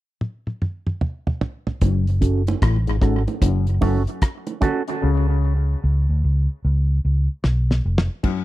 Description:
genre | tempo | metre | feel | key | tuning
dub reggae | 75 BPM | 4/4 | swing 64% on 16ths | F# minor | A4 = 442 Hz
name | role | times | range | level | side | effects
damped 70s drum kit | drums | 0.2-8.4 s | crash cymbal, hi-hat, kick drum, rim click, snare drum, toms | -21 LUFS | equal | none
overdriven clav | riff | 1.8-8.4 s | F#2 to C#3 | -26 LUFS | left 7 dB | low-pass filter, tape echo
vintage muted fingered electric bass | bass | 1.8-8.1 s | E#1 to D2 | -18 LUFS | equal | none
bongos | percussion | 1.8-8.4 s | none | -30 LUFS | right 6 dB | tape echo
electric guitar with an envelope filter | accompaniment | 2.2-4.8 s | C#4 to A4 | -26 LUFS | right 5 dB | low-pass filter, tape echo
room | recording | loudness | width
little or no reverb | dry, close 1970s-style studio recording | -18 LUFS | side -16 dB against mid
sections
0.0-1.8 A section; 1.8-8.2 B section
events
drum fill 0.2-1.8, 7.4-8.2; drums muted 5.0-8.2; part muted 8.2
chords
0.0 N.C.; 1.8 F#m; 5.0 N.C.

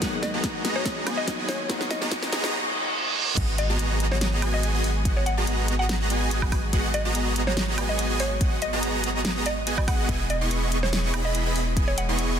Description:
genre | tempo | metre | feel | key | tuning
future bass | 143 BPM | 4/4 | swing 53% on 16ths, half-time | G# minor | A4 = 440 Hz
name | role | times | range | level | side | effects
mellow tine electric piano | accompaniment | 0.0-3.4 s | F#3 to A#4 | -37 LUFS | left 4 dB | medium stereo tremolo, sidechain pumping, tape echo
airy breathy pad | sustained chords | 0.0-12.4 s | D#3 to D#5 | -36 LUFS | left 2 dB | chorus, sidechain pumping
supersaw chords | riff | 0.0-12.4 s | B3 to C#6 | -27 LUFS | right 1 dB | sidechain pumping
long sustained 808-style bass | bass | 0.0-12.4 s | E1 to G#1 | -28 LUFS | equal | sidechain pumping
electronic kick drum | drums | 0.0-11.9 s | none | -26 LUFS | equal | none
pop drum kit | drums | 0.0-12.3 s | crash cymbal, hi-hat, snare drum, woodblock | -31 LUFS | equal | none
riser, reverse cymbal and impact | sound effects | 0.3-5.1 s | none | -33 LUFS | right 4 dB | none
mallet-like synth pluck | melody | 0.2-12.4 s | C#5 to F#5 | -32 LUFS | equal | chorus, vintage 12-bit sampler grit, sidechain pumping, tape echo
room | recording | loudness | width
light reverb, digital ambience | dense, heavily limited modern master, high-pass filter | -22 LUFS | side -8 dB against mid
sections
0.0-3.4 A section; 3.4-12.4 B section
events
build-up 0.0-3.4; drum fill 0.0-2.5; filter sweep 0.0-3.4; reverse cymbal 2.5-3.4; drop 3.4-12.4; impact 3.4-5.1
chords
0.0 G#m7; 10.1 Emaj7

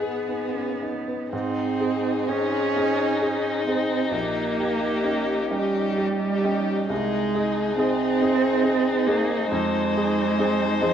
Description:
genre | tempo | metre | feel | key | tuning
classical, slow romantic movement for piano quartet | 37-48 BPM (dotted quarters) | 6/8 | rubato | Ab major | A4 = 440 Hz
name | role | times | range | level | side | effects
rich violin | melody | 0.0-10.9 s | G4 to C5 | -29 LUFS | left 6 dB | none
rich violin | second line | 0.0-10.9 s | B3 to Eb4 | -30 LUFS | left 5 dB | none
warm cello | second line | 0.0-10.9 s | F3 to Db4 | -25 LUFS | right 5 dB | none
clear baby grand piano | accompaniment | 0.0-10.9 s | Bb1 to G#4 | -27 LUFS | equal | none
room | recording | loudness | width
moderate stone room reverb, RT60 1.1 s | worn, warbling old tape, cassette tape, warbly pitch drift | -21 LUFS | side -9 dB against mid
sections
0.0-1.3 A section; 1.3-10.9 B section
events
none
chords
0.0 G#m; 1.3 Ab; 4.1 Eb7/Bb; 6.9 Ab/C; 9.5 Fm7

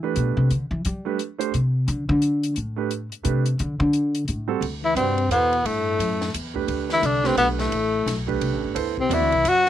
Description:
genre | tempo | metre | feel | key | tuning
modal jazz | 174 BPM | 3/4 | swing 62% on 8ths | D mixolydian | A4 = 437 Hz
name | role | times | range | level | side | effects
warm concert grand piano | accompaniment | 0.0-9.3 s | G3 to D5 | -26 LUFS | right 11 dB | none
upright bass | bass | 0.0-9.7 s | G1 to G3 | -24 LUFS | left 1 dB | none
compact cocktail drum kit | drums | 0.2-9.7 s | hi-hat, kick drum, ride cymbal, snare drum | -34 LUFS | equal | none
breathy tenor saxophone | melody | 4.8-9.7 s | A3 to F#4 | -20 LUFS | left 1 dB | none
breathy trombone | second line | 4.8-9.7 s | A2 to F#3 | -30 LUFS | left 12 dB | none
room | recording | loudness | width
little or no reverb | 1960s-style stereo with parts hard left and right | -20 LUFS | side -11 dB against mid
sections
0.0-4.6 A section; 4.6-9.7 B section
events
upright bass solo 0.0-4.6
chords
0.0 D7sus4; 4.6 D9sus4

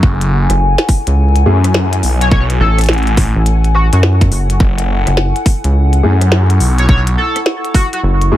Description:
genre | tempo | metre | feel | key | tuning
glitch hop | 105 BPM | 4/4 | swing 64% on 16ths | F# minor | A4 = 440 Hz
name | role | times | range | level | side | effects
phased detuned saw bass | bass | 0.0-8.4 s | F#1 to F#2 | -12 LUFS | equal | phaser, overdrive
electronic kick drum | drums | 0.0-7.9 s | none | -11 LUFS | equal | none
warbly tape-like pad | texture | 0.0-8.4 s | E4 to C#6 | -20 LUFS | left 2 dB | chorus, built-in reverb, sidechain pumping
glitchy drum kit | drums | 0.2-8.3 s | hi-hat, rim click, snare drum | -18 LUFS | equal | overdrive
rubbery square bass | bass | 0.5-8.3 s | F#1 to F#2 | -11 LUFS | equal | none
dark concert grand piano | stabs | 1.5, 6.0-8.4 s | A3 to G#4 | -20 LUFS | left 2 dB | sidechain pumping, dub echo
sync lead | melody | 2.2-8.0 s | F#4 to C#5 | -20 LUFS | equal | lush chorus, cassette tape, dub echo
room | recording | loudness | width
little or no reverb | echo-heavy mix, vinyl crackle | -10 LUFS | side -13 dB against mid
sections
0.0-8.4 A section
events
none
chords
0.0 F#m9

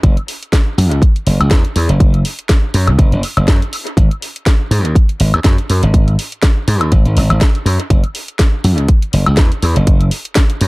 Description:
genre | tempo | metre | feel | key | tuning
nu-disco, nu disco | 122 BPM | 4/4 | swing 55% on 16ths | unclear | A4 = 440 Hz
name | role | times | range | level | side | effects
slap bass | bass | 0.0-10.7 s | F#1 to G#2 | -12 LUFS | equal | none
electronic kick drum | drums | 0.0-10.5 s | none | -11 LUFS | equal | none
house drum kit | drums | 0.0-10.7 s | hi-hat, snare drum, woodblock | -20 LUFS | equal | dub echo
room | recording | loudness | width
little or no reverb | echo-heavy mix | -11 LUFS | side -23 dB against mid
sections
0.0-10.7 A section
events
none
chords
none

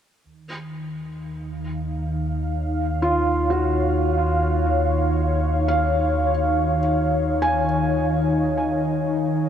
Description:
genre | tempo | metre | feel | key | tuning
ambient | free time | none | none | Eb minor | A4 = 440 Hz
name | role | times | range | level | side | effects
ethereal airy pad | sustained chords | 0.5-9.5 s | Eb3 to F5 | -22 LUFS | left 1 dB | ensemble chorus, built-in reverb
round analog bass | bass | 0.3-9.4 s | Eb2 | -25 LUFS | equal | none
felt-muted upright piano | arpeggios | 3.0-9.5 s | F4 to Ab5 | -25 LUFS | right 1 dB | tape echo
room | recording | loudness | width
wet huge ambient reverb, RT60 9.3 s | dark, warm production | -19 LUFS | side -9 dB against mid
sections
0.3-9.5 A section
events
filter sweep on ambient pad 0.3-9.5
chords
0.3 Ebm7

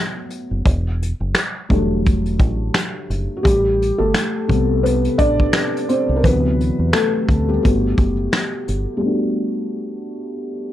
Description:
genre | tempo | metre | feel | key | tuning
lo-fi hip hop | 86 BPM | 4/4 | swing 58% on 16ths | G major | A4 = 441 Hz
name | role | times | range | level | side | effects
felt-muted upright piano | accompaniment | 0.0-10.7 s | C3 to D5 | -19 LUFS | left 1 dB | low-pass filter, plate reverb
vintage brush drum kit | drums | 0.3-8.9 s | finger snaps, hi-hat, kick drum, snare drum | -18 LUFS | equal | none
deep dub fingered electric bass | bass | 0.5-8.8 s | E1 to E2 | -21 LUFS | equal | none
room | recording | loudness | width
light reverb | none | -16 LUFS | side -12 dB against mid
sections
0.0-9.0 A section; 9.0-10.7 B section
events
felt piano solo 0.0-9.0; filter sweep on felt piano 9.0-10.7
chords
0.0 Gmaj7 (rootless); 0.7 Em11; 3.4 Am9; 6.2 D13; 7.6 Gmaj9; 9.0 Gmaj7

